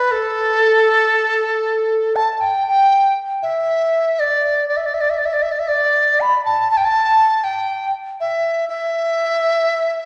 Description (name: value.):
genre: chinese traditional, Chinese chamber ensemble.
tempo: 60 BPM.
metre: 4/4.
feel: rubato.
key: unclear.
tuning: A4 = 440 Hz.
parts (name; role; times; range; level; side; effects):
large dizi; solo; 0.0-10.1 s; A4 to B5; -17 LUFS; equal; none.
room: wet recital hall reverb, RT60 1.6 s.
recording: none.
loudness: -17 LUFS.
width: mono.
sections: 0.0-10.1 A section.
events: none.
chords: none.